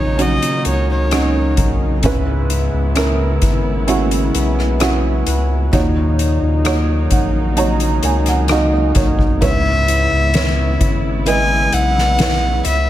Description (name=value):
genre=pop ballad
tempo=65 BPM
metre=4/4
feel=straight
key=unclear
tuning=A4 = 435 Hz
part: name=warm violin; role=melody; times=0.0-1.6, 9.4-12.9 s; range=C#5 to G#5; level=-19 LUFS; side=left 1 dB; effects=none
part: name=felt-muted upright piano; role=accompaniment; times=0.0-12.9 s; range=G#2 to A#5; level=-20 LUFS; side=right 4 dB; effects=none
part: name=warm studio string section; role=sustained chords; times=0.0-12.9 s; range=C#3 to E4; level=-25 LUFS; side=equal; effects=none
part: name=fingerpicked plugged-in steel-string acoustic guitar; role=arpeggios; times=0.0-12.9 s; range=C#3 to B4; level=-24 LUFS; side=left 5 dB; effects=tape echo
part: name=saturated sub bass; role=bass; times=0.0-12.9 s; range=G#1 to D#2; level=-18 LUFS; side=equal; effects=none
part: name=soft-mallet drum kit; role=drums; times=0.2-12.9 s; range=hi-hat, kick drum, rim click, snare drum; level=-20 LUFS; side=equal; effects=none
room=light reverb, small room ambience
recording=none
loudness=-13 LUFS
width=side -13 dB against mid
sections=0.0-12.9 A section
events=felt piano fill 6.7-9.4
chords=0.0 D#m7; 2.0 C#m7; 5.7 D#m7; 9.4 C#m7